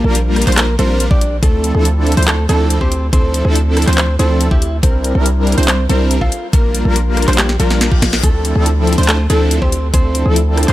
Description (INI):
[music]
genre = future bass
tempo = 141 BPM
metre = 4/4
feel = half-time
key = D minor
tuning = A4 = 440 Hz
[part]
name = direct-recorded clean electric guitar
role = melody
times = 0.0-10.3 s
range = F3 to F5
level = -22 LUFS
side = equal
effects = sidechain pumping, tape echo
[part]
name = wide unison pluck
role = arpeggios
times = 0.0-10.7 s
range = G4 to C5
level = -25 LUFS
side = equal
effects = sidechain pumping, tape echo
[part]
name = big bright polysynth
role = riff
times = 0.0-10.7 s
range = F3 to C5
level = -18 LUFS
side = equal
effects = sidechain pumping
[part]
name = warm 808-style bass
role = bass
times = 0.0-10.7 s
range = Bb1 to D2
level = -15 LUFS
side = equal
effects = sidechain pumping
[part]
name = trap drum kit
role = drums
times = 0.1-10.7 s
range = handclaps, hi-hat, rim click, snare drum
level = -19 LUFS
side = equal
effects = none
[part]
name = electronic kick drum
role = drums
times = 1.1-10.0 s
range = none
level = -13 LUFS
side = equal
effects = none
[part]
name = reverse cymbal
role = sound effects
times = 7.8-8.2 s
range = none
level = -27 LUFS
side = left 6 dB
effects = none
[sound]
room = digital ambience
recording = none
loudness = -11 LUFS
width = side -15 dB against mid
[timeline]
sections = 0.0-10.7 A section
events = drum fill 7.4-8.2; reverse cymbal 7.8-8.2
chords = 0.0 Bb6; 1.4 Dm9; 4.8 C9; 6.3 Bb6; 8.2 Dm9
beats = 0.15 0.58 1.00 | 1.43 1.85 2.28 2.70 | 3.13 3.55 3.98 4.41 | 4.83 5.26 5.68 6.11 | 6.53 6.96 7.38 7.81 | 8.23 8.66 9.09 9.51 | 9.94 10.36